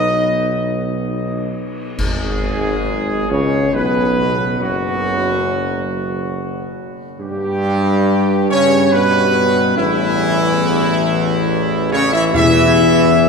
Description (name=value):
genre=classical, ceremonial fanfare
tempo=69 BPM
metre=3/4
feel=straight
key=unclear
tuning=A4 = 440 Hz
part: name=clear trumpet section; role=melody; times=0.0-13.3 s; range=E4 to E5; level=-19 LUFS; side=equal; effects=none
part: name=dark French horn section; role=sustained chords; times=0.0-13.3 s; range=E3 to E4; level=-21 LUFS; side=left 5 dB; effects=none
part: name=warm trombone section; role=sustained chords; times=0.0-13.3 s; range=E2 to D#4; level=-22 LUFS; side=right 2 dB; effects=none
part: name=warm tuba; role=bass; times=0.0-13.3 s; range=F#1 to G2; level=-20 LUFS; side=right 2 dB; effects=none
part: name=clash cymbals and concert bass drum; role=percussion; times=2.0-3.7 s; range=none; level=-27 LUFS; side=equal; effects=none
part: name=timpani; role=percussion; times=12.3-13.3 s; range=E2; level=-22 LUFS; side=left 2 dB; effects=none
room=wet cathedral reverb, RT60 5.9 s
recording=minimal, uncompressed stereo recording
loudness=-14 LUFS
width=side -5 dB against mid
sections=0.0-2.0 A section; 2.0-13.3 B section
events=band accent 2.0-2.9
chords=0.0 B; 2.0 G#madd11; 4.6 N.C.; 7.2 G; 9.8 A5; 12.3 N.C.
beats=0.16 1.06 | 1.99 2.87 3.75 | 4.61 5.48 6.34 | 7.21 8.07 8.92 | 9.78 10.64 11.49 | 12.35 13.20